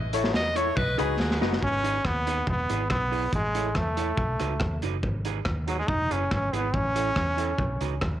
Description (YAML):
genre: ska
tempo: 141 BPM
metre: 4/4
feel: straight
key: G# phrygian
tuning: A4 = 440 Hz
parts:
  - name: vintage muted fingered electric bass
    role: bass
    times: 0.0-8.2 s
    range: E1 to E2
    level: -30 LUFS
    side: equal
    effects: none
  - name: electric guitar through a small old amp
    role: accompaniment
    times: 0.1-7.9 s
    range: D#4 to C#5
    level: -35 LUFS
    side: right 15 dB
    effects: spring reverb
  - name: warm upright piano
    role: stabs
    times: 0.1-1.6 s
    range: D#4 to C#5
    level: -30 LUFS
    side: left 12 dB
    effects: none
  - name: crunchy breakbeat drum kit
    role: drums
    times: 0.1-8.1 s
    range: hi-hat, kick drum, rim click, snare drum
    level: -30 LUFS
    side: equal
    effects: none
  - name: edgy alto saxophone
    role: melody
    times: 0.4-1.4 s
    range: G#4 to D#5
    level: -30 LUFS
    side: equal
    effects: tape echo
  - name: brilliant trombone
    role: melody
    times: 1.6-8.0 s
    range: F#3 to D#4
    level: -27 LUFS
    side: equal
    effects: none
room: light reverb, small room ambience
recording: 1960s-style stereo with parts hard left and right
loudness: -24 LUFS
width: side -12 dB against mid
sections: 0.0-1.6 A section; 1.6-8.2 B section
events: alto saxophone solo 0.0-1.6; drum fill 1.2-1.6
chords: 0.0 A; 0.8 B; 1.6 G#m; 2.5 E; 3.3 A; 4.2 B; 5.0 G#m; 5.9 E; 6.7 A; 7.6 B